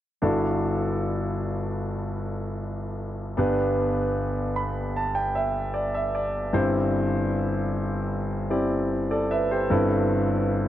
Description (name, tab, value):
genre	pop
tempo	76 BPM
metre	4/4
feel	straight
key	unclear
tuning	A4 = 442 Hz
part	clear concert grand piano	accompaniment	0.2-10.7 s	G1 to B5	-23 LUFS	equal	none
room	light reverb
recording	dry, close 1970s-style studio recording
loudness	-23 LUFS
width	side -12 dB against mid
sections	0.2-10.7 A section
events	grand piano fill 4.2-6.5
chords	0.2 Dadd9/G; 3.4 G; 6.5 C/G; 9.7 Amadd9/G